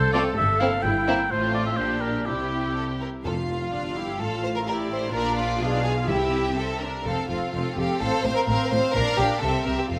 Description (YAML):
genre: quick classical-period movement for symphony orchestra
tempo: 126 BPM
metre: 2/4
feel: straight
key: F major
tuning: A4 = 441 Hz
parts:
  - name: warm oboe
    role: second line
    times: 0.0-3.0 s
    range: G4 to G5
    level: -28 LUFS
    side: equal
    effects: none
  - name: rich symphonic viola section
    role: accompaniment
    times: 0.0-10.0 s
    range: C4 to C5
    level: -31 LUFS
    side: equal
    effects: none
  - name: clear chamber cello section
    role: bass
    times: 0.0-10.0 s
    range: C2 to C3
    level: -33 LUFS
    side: equal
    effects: none
  - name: clear chamber double bass section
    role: bass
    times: 0.0-10.0 s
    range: F1 to C2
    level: -33 LUFS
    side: equal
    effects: none
  - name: clear chamber violin section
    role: melody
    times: 0.1-10.0 s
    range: E4 to F5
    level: -36 LUFS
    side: equal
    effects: none
  - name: clear studio violin section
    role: second line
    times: 0.1-10.0 s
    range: G3 to C5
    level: -30 LUFS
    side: equal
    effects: none
  - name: timpani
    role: percussion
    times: 3.2-3.9, 6.1-6.8, 9.9-10.0 s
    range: F2 to C3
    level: -38 LUFS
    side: equal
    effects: none
room: moderate concert hall reverb, RT60 2.2 s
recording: close, detailed microphones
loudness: -25 LUFS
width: mono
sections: 0.0-3.2 A section; 3.2-10.0 B section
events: none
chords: 0.4 C7/G; 1.3 F/A; 1.8 Gm/Bb; 2.3 C; 3.2 Fmaj7sus2; 4.2 F/A; 5.1 Bb; 5.6 Bdim7; 6.1 C; 7.1 F; 8.0 F/A; 8.9 Bb; 9.4 C